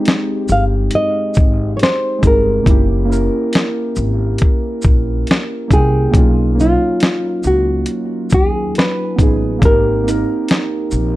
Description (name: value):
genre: lo-fi hip hop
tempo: 69 BPM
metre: 4/4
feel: swing 60% on 16ths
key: unclear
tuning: A4 = 440 Hz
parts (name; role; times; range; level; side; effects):
- muted felt-like synth keys; accompaniment; 0.0-11.2 s; F#3 to G5; -19 LUFS; right 1 dB; chorus
- dusty soul sampler-style drum kit; drums; 0.1-11.2 s; hi-hat, kick drum, shaker, snare drum; -14 LUFS; equal; none
- nylon-string guitar; melody; 0.5-11.2 s; E#4 to F5; -18 LUFS; equal; none
- upright bass; bass; 0.5-11.2 s; Gb1 to D#2; -18 LUFS; equal; none
room: light reverb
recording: none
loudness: -13 LUFS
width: side -16 dB against mid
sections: 0.0-11.2 A section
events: none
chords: 0.0 Fm7 (rootless); 2.7 Gb7b9; 6.1 Bmaj9#11; 9.6 Abmaj9